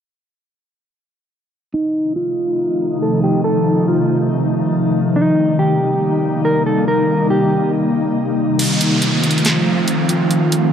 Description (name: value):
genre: hip hop, atmospheric cloud-rap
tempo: 140 BPM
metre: 4/4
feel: half-time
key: unclear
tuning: A4 = 440 Hz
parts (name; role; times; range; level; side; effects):
- mellow electric guitar; melody; 1.7-7.7 s; Eb4 to Bb4; -19 LUFS; right 1 dB; low-pass filter, analog delay
- glassy FM pad; sustained chords; 2.1-10.7 s; C3 to F4; -16 LUFS; left 1 dB; ensemble chorus, built-in reverb, low-pass filter
- trap drum kit; drums; 8.6-10.6 s; crash cymbal, hi-hat, snare drum; -20 LUFS; right 1 dB; none
- downlifter; sound effects; 8.6-10.7 s; none; -21 LUFS; right 2 dB; none
room: light reverb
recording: dry, gritty hardware recording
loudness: -14 LUFS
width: side -8 dB against mid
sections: 1.7-8.6 A section; 8.6-10.7 B section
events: filter sweep 1.7-8.6; kick muted 8.6-10.7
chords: 1.7 F7; 5.2 Cm7; 8.6 F7